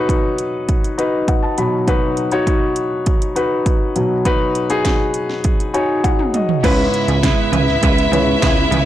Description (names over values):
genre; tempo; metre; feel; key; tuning
piano-driven pop; 101 BPM; 4/4; straight; unclear; A4 = 441 Hz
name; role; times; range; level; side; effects
warm grand piano; accompaniment; 0.0-8.9 s; G#2 to B5; -18 LUFS; left 2 dB; none
house drum kit; drums; 0.1-8.9 s; crash cymbal, hi-hat, kick drum, snare drum, toms; -18 LUFS; right 1 dB; none
rich studio violin section; second line; 6.6-8.9 s; E4 to E5; -20 LUFS; left 2 dB; digital delay
direct-recorded clean electric guitar; riff; 6.6-8.9 s; C#3 to B4; -20 LUFS; right 8 dB; wide subtle chorus
plucky analog bass; bass; 6.6-8.9 s; C#2; -17 LUFS; equal; none
room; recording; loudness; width
moderate studio reverb, RT60 0.6 s; blown-out, overdriven recording, overdrive; -14 LUFS; side -12 dB against mid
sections
0.0-6.6 A section; 6.6-8.9 B section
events
grand piano fill 0.7-1.9, 5.4-6.6; drum fill 6.0-6.6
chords
0.0 B; 6.6 C#m7